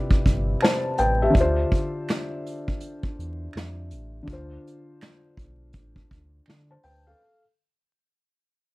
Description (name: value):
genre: lo-fi hip hop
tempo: 82 BPM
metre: 4/4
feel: swing 64% on 16ths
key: D dorian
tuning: A4 = 440 Hz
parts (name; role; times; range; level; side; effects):
- felt-muted upright piano; accompaniment; 0.0-7.4 s; C3 to A5; -25 LUFS; left 1 dB; cassette tape, low-pass filter
- vintage brush drum kit; drums; 0.1-7.1 s; hi-hat, kick drum, snare drum; -23 LUFS; equal; none
- sub bass with octave; bass; 0.3-7.1 s; G1 to D3; -28 LUFS; equal; none
- finger snaps; percussion; 0.6-6.7 s; none; -37 LUFS; right 5 dB; none
room: light reverb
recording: vinyl crackle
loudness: -22 LUFS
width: side -20 dB against mid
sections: 0.0-7.2 A section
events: fade-out 0.0-7.2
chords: 0.0 Cmaj7; 1.3 Dm7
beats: 0.62 | 1.35 2.08 2.81 3.54 | 4.28 5.01 5.74 6.47